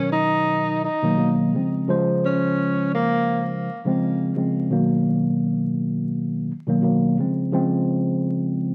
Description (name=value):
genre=hip hop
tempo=85 BPM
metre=4/4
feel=swing 60% on 16ths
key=unclear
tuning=A4 = 440 Hz
part: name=breathy tenor saxophone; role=melody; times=0.0-3.5 s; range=A#3 to D#4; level=-25 LUFS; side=equal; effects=high-pass filter, low-pass filter, digital delay
part: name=mellow tine electric piano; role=accompaniment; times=0.0-8.7 s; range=B2 to B#4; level=-23 LUFS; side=equal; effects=cassette tape, high-pass filter, low-pass filter
room=wet studio reverb, RT60 0.7 s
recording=dark, warm production, vinyl crackle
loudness=-22 LUFS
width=mono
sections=0.0-8.7 A section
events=none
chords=0.0 Bmaj7; 1.5 C#maj7; 4.7 Bmaj7; 7.2 C#maj7